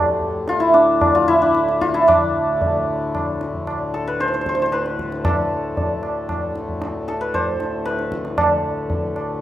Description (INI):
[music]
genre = indian classical, Hindustani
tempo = 114 BPM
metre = 3/4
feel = straight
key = D raga kafi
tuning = A4 = 440 Hz
[part]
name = santur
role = melody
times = 0.0-9.4 s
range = D4 to C5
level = -19 LUFS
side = equal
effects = none
[part]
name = hand-pumped harmonium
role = drone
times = 0.0-9.4 s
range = D2 to A2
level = -27 LUFS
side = left 2 dB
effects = none
[part]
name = tabla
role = percussion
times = 0.2-9.4 s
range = none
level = -23 LUFS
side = right 1 dB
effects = none
[sound]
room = moderate plate reverb, RT60 3.4 s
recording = rough home demo mix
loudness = -17 LUFS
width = side -13 dB against mid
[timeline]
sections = 0.0-2.1 A section; 2.1-9.4 B section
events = speeding up 0.0-9.4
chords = none